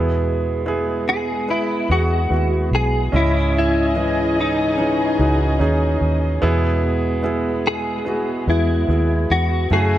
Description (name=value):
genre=pop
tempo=73 BPM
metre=4/4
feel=straight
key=E major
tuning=A4 = 444 Hz
part: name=warm concert grand piano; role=accompaniment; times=0.0-10.0 s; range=G#2 to D#5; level=-22 LUFS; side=right 2 dB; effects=none
part: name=dark studio string section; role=sustained chords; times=0.0-10.0 s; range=C#3 to G#5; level=-26 LUFS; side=equal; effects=none
part: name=vintage muted fingered electric bass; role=bass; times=0.0-10.0 s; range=B1 to F#2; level=-20 LUFS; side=equal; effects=none
part: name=direct-recorded clean electric guitar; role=melody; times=1.1-10.0 s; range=D#4 to G#4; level=-21 LUFS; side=left 2 dB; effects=ensemble chorus
room=light reverb, studio ambience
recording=none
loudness=-17 LUFS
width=side -13 dB against mid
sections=0.0-10.0 A section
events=none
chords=0.0 E; 3.1 C#madd9; 6.4 E